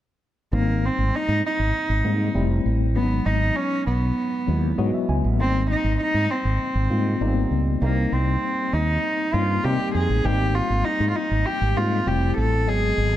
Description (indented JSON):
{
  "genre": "polished 1980s jazz-funk pop",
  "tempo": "99 BPM",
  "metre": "4/4",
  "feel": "straight",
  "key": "Ab major",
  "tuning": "A4 = 440 Hz",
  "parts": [
    { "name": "warm cello", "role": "melody", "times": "0.5-13.2 s", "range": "Bb3 to A4", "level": "-24 LUFS", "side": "right 1 dB", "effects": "none" },
    { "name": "tine electric piano", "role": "accompaniment", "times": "0.5-13.2 s", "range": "Gb3 to G#5", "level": "-27 LUFS", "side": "left 3 dB", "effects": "overdrive, fast stereo tremolo, analog chorus" },
    { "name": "mellow fretless electric bass", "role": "bass", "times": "0.5-13.2 s", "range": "F1 to C3", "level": "-22 LUFS", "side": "equal", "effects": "none" }
  ],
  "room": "light reverb, small room reverb",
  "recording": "none",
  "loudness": "-20 LUFS",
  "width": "side -13 dB against mid",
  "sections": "0.5-13.2 A section",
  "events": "tine electric piano fill 4.5-5.4",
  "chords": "0.5 Abmaj7; 2.4 Fmaj7; 3.0 Emaj7/G#; 5.4 Abmaj7; 7.8 Cm7; 10.2 Abmaj7; 12.1 Fmaj7"
}